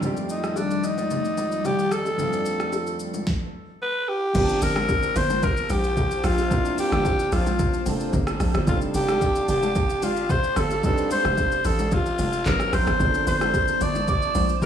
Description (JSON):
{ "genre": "amapiano", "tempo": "111 BPM", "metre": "4/4", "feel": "straight", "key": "G minor", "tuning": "A4 = 440 Hz", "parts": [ { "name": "clear concert grand piano", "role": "accompaniment", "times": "0.0-14.7 s", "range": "F2 to A5", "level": "-31 LUFS", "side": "right 2 dB", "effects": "none" }, { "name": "hollow soft pad", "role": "sustained chords", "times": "0.0-14.7 s", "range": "Eb3 to Bb5", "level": "-32 LUFS", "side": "left 2 dB", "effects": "ensemble chorus, sidechain pumping" }, { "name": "smooth R&B drum kit", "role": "drums", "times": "0.0-14.7 s", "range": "crash cymbal, handclaps, hi-hat, kick drum, rim click, shaker, snare drum", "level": "-28 LUFS", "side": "equal", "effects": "none" }, { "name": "congas and bongos", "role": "percussion", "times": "0.0-14.7 s", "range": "none", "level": "-30 LUFS", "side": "left 3 dB", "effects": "none" }, { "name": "growling alto saxophone", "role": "melody", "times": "0.3-14.7 s", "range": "D4 to D5", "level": "-24 LUFS", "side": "left 1 dB", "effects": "analog delay" }, { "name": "tight log drum bass", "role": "bass", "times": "4.4-14.7 s", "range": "F1 to Bb1", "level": "-26 LUFS", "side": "right 1 dB", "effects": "none" } ], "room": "light reverb", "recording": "dry, gritty hardware recording, studio reverb", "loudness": "-20 LUFS", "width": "side -9 dB against mid", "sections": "0.0-4.3 A section; 4.3-14.7 B section", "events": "drop 4.3-14.7", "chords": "0.0 F13; 3.8 N.C.; 4.3 Gm11; 8.7 F13; 12.5 Abm11; 13.0 Gm11" }